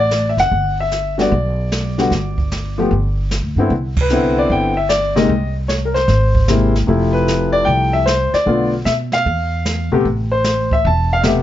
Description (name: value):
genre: jazz piano trio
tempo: 151 BPM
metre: 4/4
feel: swing 67% on 8ths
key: G major, C major from 3.7 s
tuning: A4 = 440 Hz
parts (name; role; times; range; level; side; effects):
- warm baby grand piano; melody; 0.0-11.4 s; C3 to A5; -16 LUFS; left 2 dB; none
- upright bass; bass; 0.0-11.4 s; E1 to B2; -19 LUFS; equal; none
- jazz brush drum kit; drums; 0.1-11.4 s; brushed snare drum, hi-hat, kick drum, ride cymbal, snare drum; -23 LUFS; right 2 dB; none
room: light reverb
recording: dark, warm production, nothing above 7.6 kHz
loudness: -14 LUFS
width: side -12 dB against mid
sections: 0.0-3.7 A section; 3.7-11.4 B section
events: band accent 3.9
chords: 0.0 D; 0.5 G; 2.9 G5; 3.7 Cmaj9; 5.3 C7(#5, no3); 6.9 Fmaj7; 8.5 Bm7b5; 9.3 E5; 10.1 Am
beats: 0.11 | 0.51 0.91 1.31 1.71 | 2.10 2.50 2.90 3.30 | 3.70 4.10 4.50 4.89 | 5.29 5.69 6.09 6.48 | 6.88 7.28 7.67 8.07 | 8.47 8.87 9.26 9.66 | 10.05 10.45 10.85 11.24